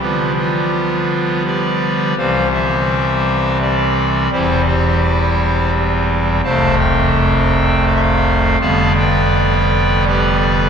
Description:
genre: classical, chorale-style piece for pipe organ.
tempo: 84 BPM.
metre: 3/4.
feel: rubato.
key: C major.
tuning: A4 = 440 Hz.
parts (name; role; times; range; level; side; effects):
pipe organ, clarinet reed; solo; 0.0-10.7 s; E1 to A5; -13 LUFS; equal; none.
room: wet cathedral reverb, RT60 6.1 s.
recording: heard from further back in the room.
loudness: -13 LUFS.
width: side -7 dB against mid.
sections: 0.0-10.7 A section.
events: none.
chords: 0.0 G7/D; 2.2 C; 4.3 C/E; 6.5 F; 8.6 G7/F.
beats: | 0.01 0.74 1.46 | 2.17 2.89 3.61 | 4.32 5.03 5.74 | 6.45 7.17 7.89 | 8.61 9.35 10.08.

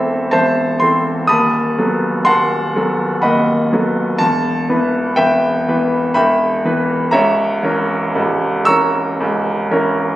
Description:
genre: classical.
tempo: 62 BPM.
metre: 3/4.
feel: rubato.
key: E minor.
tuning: A4 = 441 Hz.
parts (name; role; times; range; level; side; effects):
bright grand piano; accompaniment; 0.0-10.2 s; C#1 to E6; -13 LUFS; equal; none.
room: moderate stone room reverb, RT60 1.4 s.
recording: recorded on a phone in the room, studio reverb, compression.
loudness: -13 LUFS.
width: side -15 dB against mid.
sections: 0.0-10.2 A section.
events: none.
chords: 0.0 Am/E; 1.3 B7/D#; 4.2 Em; 7.1 A#dim/C#.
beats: 0.34 | 1.31 2.28 3.25 | 4.22 5.19 6.17 | 7.14 8.15 9.20.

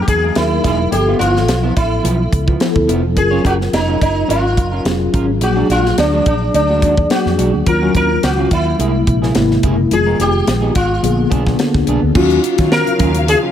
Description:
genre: polished 1980s jazz-funk pop.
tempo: 107 BPM.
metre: 4/4.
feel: swing 54% on 16ths.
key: Eb minor.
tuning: A4 = 440 Hz.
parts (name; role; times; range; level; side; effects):
sitar; melody; 0.0-13.4 s; D4 to Bb4; -17 LUFS; equal; none.
mellow tine electric piano; accompaniment; 0.0-13.5 s; C3 to E5; -18 LUFS; left 3 dB; medium stereo tremolo, ensemble chorus.
electric guitar at the edge of break-up; riff; 0.1-13.5 s; F3 to Db5; -23 LUFS; right 4 dB; lush chorus.
mellow fretless electric bass; bass; 0.1-13.3 s; E1 to Eb3; -18 LUFS; equal; none.
tight funk drum kit; drums; 0.1-13.4 s; crash cymbal, hi-hat, kick drum, snare drum; -19 LUFS; equal; none.
warm studio string section; sustained chords; 12.2-13.5 s; Db3 to F5; -23 LUFS; left 1 dB; none.
room: light reverb, small room ambience.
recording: none.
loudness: -12 LUFS.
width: side -10 dB against mid.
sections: 0.0-12.2 A section; 12.2-13.5 B section.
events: none.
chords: 0.0 Emaj9#11; 0.9 G13; 3.2 Gbmaj7; 5.4 Bb7b13; 7.7 Ebm9; 8.8 C7b13; 9.9 Fm7b5; 11.0 Bb7b9; 12.2 Ebm9.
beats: 0.36 | 0.92 1.48 2.04 2.61 | 3.17 3.73 4.29 4.85 | 5.42 5.98 6.54 7.10 | 7.66 8.22 8.79 9.35 | 9.91 10.47 11.04 11.60 | 12.16 12.72 13.28.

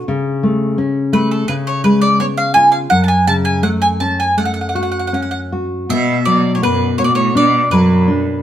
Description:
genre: fado-style ballad.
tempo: 76-86 BPM.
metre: 4/4.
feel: rubato.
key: F# minor.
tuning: A4 = 436 Hz.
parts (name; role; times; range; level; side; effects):
nylon-string guitar; accompaniment; 0.0-8.4 s; F#2 to F#4; -15 LUFS; left 1 dB; none.
mandolin; melody; 1.1-8.4 s; A4 to A5; -16 LUFS; equal; none.
clear cello; second line; 5.9-8.4 s; F#2 to B2; -18 LUFS; right 4 dB; none.
room: light reverb.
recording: band playing live in one room.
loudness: -12 LUFS.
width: side -11 dB against mid.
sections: 0.0-5.9 A section; 5.9-8.4 B section.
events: none.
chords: 0.1 A/C#; 1.5 C#7; 2.9 F#m; 5.9 Bm.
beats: | 0.07 0.77 1.47 2.18 | 2.90 3.62 4.36 5.12 | 5.89 6.62 7.35 8.09.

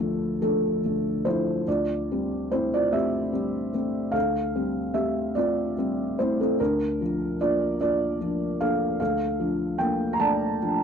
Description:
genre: neoclassical minimalist piano.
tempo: 49 BPM (dotted quarters).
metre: 6/8.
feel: rubato.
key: unclear.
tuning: A4 = 439 Hz.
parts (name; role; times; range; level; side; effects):
felt-muted upright piano; solo; 0.0-10.8 s; D2 to Bb5; -23 LUFS; equal; none.
room: light reverb.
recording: dry, close 1970s-style studio recording, lossy compression artefacts.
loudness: -23 LUFS.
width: side -7 dB against mid.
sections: 0.0-10.8 A section.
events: none.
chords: 0.0 Dm; 1.7 Am7/D; 6.6 Bb/D.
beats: 0.41 | 1.66 2.92 | 4.14 5.37 | 6.59 7.79 | 9.00 10.19.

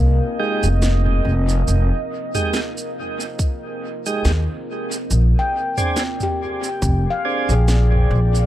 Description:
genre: ambient dub.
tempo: 70 BPM.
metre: 4/4.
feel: swing 56% on 16ths.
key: F dorian.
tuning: A4 = 441 Hz.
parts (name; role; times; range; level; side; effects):
deep dark ambient pad; sustained chords; 0.0-8.5 s; C4 to Eb5; -28 LUFS; right 2 dB; chorus, built-in reverb.
handpan; arpeggios; 0.0-8.5 s; Bb3 to G5; -26 LUFS; left 3 dB; dub echo.
upright bass; bass; 0.0-8.5 s; F1 to Eb2; -16 LUFS; equal; none.
tonewheel organ; stabs; 0.4-7.5 s; Ab3 to Ab4; -26 LUFS; right 3 dB; slow rotary speaker, dub echo.
organic electronic drum kit; drums; 0.6-8.5 s; shaker, snare drum, toms; -27 LUFS; right 1 dB; dub echo.
electronic kick drum; drums; 3.4-7.0 s; none; -21 LUFS; equal; none.
room: light reverb, digital ambience.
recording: none.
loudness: -17 LUFS.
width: side -13 dB against mid.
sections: 0.0-8.5 A section.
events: none.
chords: 0.0 Fm7; 5.1 Bb7.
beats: 0.82 | 1.68 2.54 3.39 4.25 | 5.11 5.97 6.82 7.68.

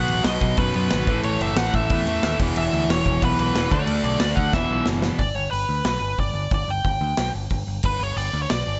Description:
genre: punk rock.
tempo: 182 BPM.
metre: 4/4.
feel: straight.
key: unclear.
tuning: A4 = 440 Hz.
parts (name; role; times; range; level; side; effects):
biting lead guitar; melody; 0.0-8.8 s; B4 to G5; -28 LUFS; equal; overdrive, digital delay.
overdriven electric guitar; riff; 0.0-5.2 s; E2 to D4; -28 LUFS; equal; none.
overdriven electric guitar; riff; 0.0-5.2 s; E2 to D4; -31 LUFS; equal; none.
growling picked electric bass; bass; 0.0-8.8 s; E1 to F#2; -29 LUFS; equal; overdrive.
big rock drum kit; drums; 0.1-8.6 s; crash cymbal, hi-hat, kick drum, snare drum; -28 LUFS; equal; none.
room: little or no reverb.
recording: nothing above 7.9 kHz.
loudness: -22 LUFS.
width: mono.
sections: 0.0-5.2 A section; 5.2-8.8 B section.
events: drum fill 4.5-5.2; half time 5.2-8.8.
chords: 0.0 B; 1.1 A5; 2.4 E5; 3.7 D5; 4.5 E5; 5.2 G.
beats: 0.25 0.58 0.91 | 1.24 1.57 1.90 2.23 | 2.56 2.89 3.22 3.55 | 3.88 4.21 4.54 4.87 | 5.20 5.53 5.86 6.19 | 6.52 6.85 7.18 7.51 | 7.84 8.17 8.50.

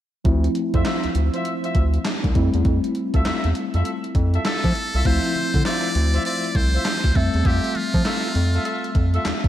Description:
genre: R&B, new jack swing.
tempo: 100 BPM.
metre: 4/4.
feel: swing 63% on 16ths.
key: D minor.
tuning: A4 = 441 Hz.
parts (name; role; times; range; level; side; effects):
mellow tine electric piano; accompaniment; 0.2-9.5 s; F3 to E5; -25 LUFS; left 1 dB; medium stereo tremolo, slapback echo.
gated 80s digital drum machine; drums; 0.2-9.5 s; crash cymbal, handclaps, hi-hat, kick drum, snare drum; -23 LUFS; equal; gated reverb, gated reverb snare.
round analog bass; bass; 0.3-9.5 s; C2 to F3; -20 LUFS; equal; none.
mellow horn section; stabs; 0.7-9.3 s; F4 to E5; -30 LUFS; equal; slapback echo.
trumpet with metal mute; melody; 4.5-9.0 s; F4 to D5; -26 LUFS; equal; none.
room: moderate lush hall reverb, RT60 2.4 s.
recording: big arena sound.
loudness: -18 LUFS.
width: side -12 dB against mid.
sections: 0.3-5.1 A section; 5.1-9.5 B section.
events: none.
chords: 0.3 Dm9; 2.4 Fmaj7; 5.1 Dm9; 7.2 Fmaj7.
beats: | 0.25 0.85 1.45 2.05 | 2.65 3.25 3.85 4.45 | 5.05 5.65 6.25 6.85 | 7.45 8.05 8.65 9.25.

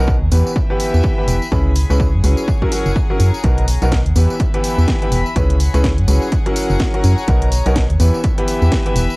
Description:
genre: piano house.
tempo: 125 BPM.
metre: 4/4.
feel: swing 59% on 16ths.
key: unclear.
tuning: A4 = 440 Hz.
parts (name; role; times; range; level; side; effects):
clear upright piano; riff; 0.0-9.0 s; B2 to B4; -21 LUFS; equal; sidechain pumping.
organ-like FM bass; bass; 0.0-9.1 s; E1 to F#2; -14 LUFS; equal; sidechain pumping.
rich chamber string section; texture; 0.0-9.2 s; G#4 to B5; -28 LUFS; left 2 dB; sidechain pumping.
electronic kick drum; drums; 0.1-8.8 s; none; -19 LUFS; equal; overdrive, cassette tape.
tambourine; percussion; 0.1-9.2 s; none; -32 LUFS; equal; none.
garage drum kit; drums; 0.3-9.1 s; hi-hat, snare drum; -25 LUFS; equal; cassette tape.
room: little or no reverb.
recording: home recording on cassette.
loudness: -13 LUFS.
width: side -26 dB against mid.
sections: 0.0-9.2 A section.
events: none.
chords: 0.3 Em; 1.5 C#m7; 2.5 F#7; 3.4 Bmaj7; 4.2 Em; 5.4 C#m7; 6.3 F#7; 7.3 Bmaj7; 8.0 Em.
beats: 0.08 0.56 1.04 | 1.52 2.00 2.48 2.96 | 3.44 3.92 4.40 4.88 | 5.36 5.84 6.32 6.80 | 7.28 7.76 8.24 8.72.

